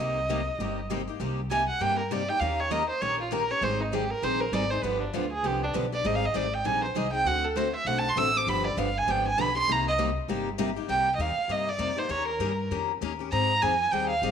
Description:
acoustic string swing (jazz manouche); 198 BPM; 4/4; swing 60% on 8ths; C minor; A4 = 440 Hz
warm violin; melody; 0.0-14.3 s; D4 to E6; -27 LUFS; right 2 dB
picked steel-string acoustic guitar; accompaniment; 0.0-14.3 s; C3 to Bb4; -32 LUFS; left 12 dB
picked steel-string acoustic guitar; accompaniment; 0.0-10.7 s; C3 to Bb4; -35 LUFS; right 10 dB
upright bass; bass; 0.0-14.3 s; G1 to Ab2; -33 LUFS; equal
moderate echo chamber reverb, RT60 1.3 s, small room ambience; 1960s-style stereo with parts hard left and right; -25 LUFS; side -7 dB against mid
0.0-1.2 A section; 1.2-10.9 B section; 10.9-14.3 A section
violin solo 1.2-10.9
0.0 Cm7; 2.4 Eb7; 3.6 Abmaj7; 4.8 G7; 6.0 Abmaj7; 7.3 D7; 8.5 G7; 9.7 Cm7; 12.1 Eb7; 13.3 Abmaj7
0.29 0.60 0.90 | 1.20 1.50 1.81 2.11 | 2.41 2.71 3.02 3.32 | 3.62 3.93 4.23 4.53 | 4.83 5.14 5.44 5.74 | 6.05 6.35 6.65 6.95 | 7.26 7.56 7.86 8.16 | 8.47 8.77 9.07 9.38 | 9.68 9.98 10.29 10.59 | 10.89 11.19 11.50 11.80 | 12.10 12.41 12.71 13.01 | 13.32 13.62 13.92 14.23

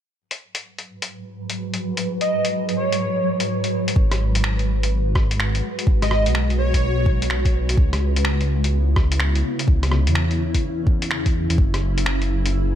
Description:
future garage; 126 BPM; 4/4; swing 65% on 16ths; G# minor; A4 = 440 Hz
granular cloud pad; sustained chords; 1.2-12.8 s; G#2 to B4; -26 LUFS; equal; built-in reverb, sidechain pumping
lo-fi sampler-style drum kit; drums; 0.3-12.5 s; finger snaps, hi-hat, rim click; -26 LUFS; left 1 dB; small room ambience
airy dreamy lead; melody; 2.2-7.1 s; C#5 to D#5; -25 LUFS; right 2 dB; chorus, tape echo
dark detuned saw bass; bass; 4.0-12.8 s; F#1 to E2; -20 LUFS; equal; tube saturation, sidechain pumping
electronic kick drum; drums; 4.0-11.7 s; -18 LUFS; equal; overdrive, small room ambience
light reverb; -18 LUFS; side -10 dB against mid
0.2-4.0 A section; 4.0-12.8 B section
filter sweep on ambient pad 0.2-4.0
0.2 G#m7; 7.8 C#m7; 11.6 F#9sus4
| 0.16 0.63 1.11 1.58 | 2.06 2.54 3.01 3.49 | 3.96 4.44 4.92 5.39 | 5.87 6.35 6.82 7.30 | 7.78 8.25 8.73 9.20 | 9.68 10.16 10.63 11.11 | 11.58 12.06 12.54

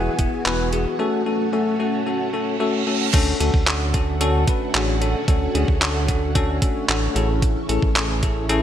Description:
dance-pop; 112 BPM; 4/4; straight; A4 = 440 Hz
bell-like tine electric piano; accompaniment; 0.0-8.6 s; A3 to B4; -23 LUFS; left 3 dB; lush chorus, sidechain pumping
string machine, full ensemble; sustained chords; 0.0-8.6 s; D3 to G#4; -27 LUFS; right 2 dB; ensemble chorus, sidechain pumping
round analog bass; bass; 0.0-8.6 s; E1 to D2; -23 LUFS; equal; sidechain pumping
detuned 8-bit digital drum machine; drums; 0.2-8.6 s; crash cymbal, handclaps, hi-hat, kick drum; -21 LUFS; equal
reverse cymbal; sound effects; 2.4-3.1 s; -28 LUFS; right 7 dB
moderate lush hall reverb, RT60 2.0 s; bright 1980s-style digital production; -18 LUFS; side -10 dB against mid
0.0-3.1 A section; 3.1-8.6 B section
reverse cymbal 2.4-3.1
0.0 Eadd9; 1.0 F#m; 3.1 Dmaj7; 7.2 Amaj7
0.46 | 0.99 1.53 2.07 2.60 | 3.14 3.67 4.21 4.74 | 5.28 5.82 6.35 6.89 | 7.42 7.96 8.49

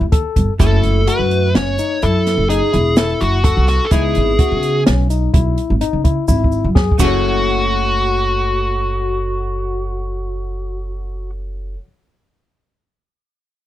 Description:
progressive instrumental, band music in an uneven meter; 127 BPM; 7/4; straight; F# dorian; A4 = 440 Hz
archtop guitar, miked and amplified; accompaniment; 0.0-11.8 s; A3 to G#4; -26 LUFS; left 1 dB; double-tracked left and right
barky tine electric piano; arpeggios; 0.0-11.9 s; C#4 to F#5; -23 LUFS; left 9 dB; slapback echo
upright bass; bass; 0.0-11.7 s; E1 to C#3; -18 LUFS; right 1 dB
open jazz drum kit; drums; 0.1-7.1 s; crash cymbal, hi-hat, kick drum, snare drum; -15 LUFS; right 1 dB
dark smooth lead guitar; melody; 0.6-11.3 s; F#4 to C#5; -19 LUFS; equal; overdrive, slapback echo
tube shaker; percussion; 0.6-7.4 s; -33 LUFS; right 8 dB
small room reverb; dry, close 1970s-style studio recording; -14 LUFS; side -13 dB against mid
0.0-7.2 A section; 7.2-10.5 B section
drum fill 6.3-7.2
0.0 B7sus4 (rootless); 0.6 F#m7; 3.9 C#m7; 7.0 F#m9
0.13 | 0.60 1.08 1.55 2.03 2.50 2.98 3.45 | 3.92 4.39 4.87 5.34 5.81 6.29 6.76 | 7.23 7.70 8.17 8.65 9.12 9.59 10.06

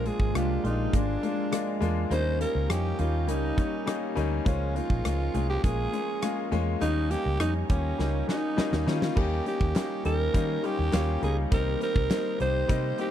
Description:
1980s-style pop; 102 BPM; 4/4; straight; A4 = 440 Hz
raspy alto saxophone; melody; 0.0-13.1 s; Db4 to C5; -31 LUFS; right 2 dB; tape echo
bright concert grand piano; accompaniment; 0.0-13.1 s; G3 to G4; -31 LUFS; left 8 dB
string machine, cellos; sustained chords; 0.0-13.1 s; Ab3 to D6; -38 LUFS; right 1 dB; ensemble chorus
direct-recorded clean electric guitar; riff; 0.0-13.1 s; Eb3 to Ab4; -38 LUFS; right 12 dB; analog chorus
vintage muted fingered electric bass; bass; 0.0-12.9 s; Ab1 to Eb3; -29 LUFS; equal
big rock drum kit; drums; 0.1-13.1 s; crash cymbal, hi-hat, kick drum, rim click, snare drum; -28 LUFS; equal
group handclap; percussion; 9.8-12.2 s; -48 LUFS; right 8 dB
little or no reverb; dry, close 1970s-style studio recording; -25 LUFS; side -10 dB against mid
0.0-9.2 A section; 9.2-13.1 B section
drum fill 8.0-9.2
0.0 Bb7; 2.1 Eb7; 4.5 Db6; 6.8 Eb7; 11.5 Cm7
0.34 0.93 1.52 | 2.11 2.70 3.29 3.87 | 4.46 5.05 5.64 6.23 | 6.81 7.40 7.99 8.58 | 9.17 9.76 10.34 10.93 | 11.52 12.11 12.70

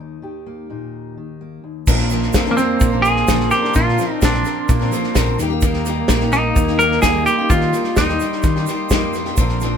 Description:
indie folk with a building arrangement; 128 BPM; 4/4; straight; Eb major; A4 = 440 Hz
fingerpicked steel-string acoustic guitar; accompaniment; 0.0-3.5 s; Eb2 to G4; -33 LUFS; left 4 dB
dark cello; second line; 1.9-9.8 s; F3 to C4; -24 LUFS; right 4 dB
picked steel-string acoustic guitar; accompaniment; 1.9-9.8 s; Bb2 to Bb4; -23 LUFS; left 4 dB
mellow brass ensemble; sustained chords; 1.9-9.8 s; G4 to C6; -28 LUFS; right 2 dB
fingered electric bass; bass; 1.9-9.8 s; Bb1 to Eb3; -23 LUFS; equal
loose indie drum kit; drums; 1.9-9.7 s; crash cymbal, kick drum, snare drum; -19 LUFS; equal
tube shaker; percussion; 1.9-9.7 s; -31 LUFS; right 8 dB
semi-hollow electric guitar; melody; 2.5-8.6 s; Bb3 to Bb4; -18 LUFS; equal; tremolo
moderate small room ambience, RT60 0.5 s; band playing live in one room; -14 LUFS; side -7 dB against mid
0.0-1.9 A section; 1.9-9.8 B section
0.0 Eb; 1.9 Bbadd9; 5.4 Eb
0.46 0.93 1.41 | 1.88 2.35 2.82 3.29 | 3.75 4.22 4.69 5.16 | 5.63 6.10 6.57 7.04 | 7.51 7.98 8.45 8.91 | 9.38

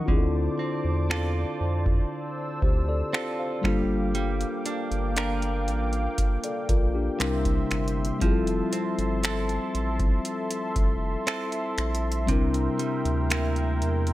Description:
contemporary R&B; 59 BPM; 4/4; straight; D minor; A4 = 440 Hz
mellow tine electric piano; accompaniment; 0.0-14.1 s; G3 to Gb5; -30 LUFS; left 4 dB
warm analog pad; sustained chords; 0.0-14.1 s; Bb3 to E6; -33 LUFS; left 1 dB; chorus, sidechain pumping
direct-recorded clean electric guitar; arpeggios; 0.0-14.1 s; C3 to Bb4; -32 LUFS; right 5 dB; tape echo
round analog bass; bass; 0.1-14.1 s; F1 to F2; -28 LUFS; equal
booming analog drum machine; drums; 0.1-14.1 s; finger snaps, hi-hat, kick drum; -26 LUFS; equal; overdrive
little or no reverb; -24 LUFS; side -16 dB against mid
0.0-14.1 A section
0.1 Dm7; 3.6 Gm7; 7.2 C7; 8.2 Fmaj7; 12.3 C7
| 0.08 1.10 2.12 3.13 | 4.15 5.17 6.18 7.20 | 8.22 9.23 10.25 11.27 | 12.29 13.30

